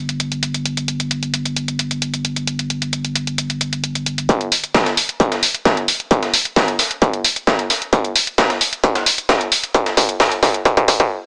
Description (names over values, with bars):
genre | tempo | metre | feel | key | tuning
driving peak-time techno | 132 BPM | 4/4 | straight | unclear | A4 = 440 Hz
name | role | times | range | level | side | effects
saturated sub bass | bass | 0.0-4.3 s | G1 | -26 LUFS | equal | overdrive, sidechain pumping, low-pass filter
electronic hi-hat | drums | 0.1-11.1 s | none | -20 LUFS | equal | overdrive, sidechain pumping on hats
breakbeat sampler-style drum kit | drums | 4.3-11.0 s | hi-hat, snare drum | -24 LUFS | equal | sidechain pumping on hats, high-pass filter on hats, high-pass filter on snare, high-pass filter on room
electronic kick drum | drums | 4.3-11.1 s | none | -18 LUFS | equal | distortion, overdrive, high-pass filter on kick
room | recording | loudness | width
light reverb | high-pass filter, small speaker sound | -18 LUFS | mono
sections
0.0-4.3 A section; 4.3-11.3 B section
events
build-up 4.3-11.3; drum fill 7.9-11.1; stop 11.1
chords
none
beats
0.20 | 0.66 1.11 1.56 2.02 | 2.47 2.93 3.38 3.84 | 4.29 4.75 5.20 5.66 | 6.11 6.56 7.02 7.47 | 7.93 8.38 8.84 9.29 | 9.75 10.20 10.65